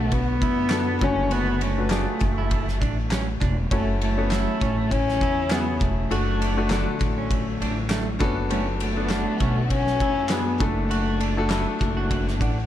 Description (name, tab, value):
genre	piano-driven pop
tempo	100 BPM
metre	4/4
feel	swing 56% on 16ths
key	unclear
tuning	A4 = 440 Hz
part	dark cello	melody	0.0-11.8 s	A3 to C#4	-26 LUFS	left 2 dB	tape echo
part	clear baby grand piano	accompaniment	0.0-12.7 s	D3 to F#5	-29 LUFS	left 4 dB	none
part	warm studio string section	sustained chords	0.0-12.7 s	C#3 to F#4	-35 LUFS	equal	none
part	upright bass	bass	0.0-12.7 s	E1 to F#2	-26 LUFS	equal	none
part	loose indie drum kit	drums	0.1-12.6 s	handclaps, kick drum, ride cymbal, snare drum	-27 LUFS	equal	tape echo
part	electric guitar at the edge of break-up	riff	0.4-12.6 s	A3 to F#4	-34 LUFS	right 8 dB	tape echo
room	light reverb, small room ambience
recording	echo-heavy mix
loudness	-21 LUFS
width	side -11 dB against mid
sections	0.0-12.7 A section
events	grand piano fill 12.1-12.7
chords	0.0 Bm7; 1.0 D/F#; 3.7 A6/F#; 6.1 D/F#; 8.2 Bm7/F#; 10.6 D/F#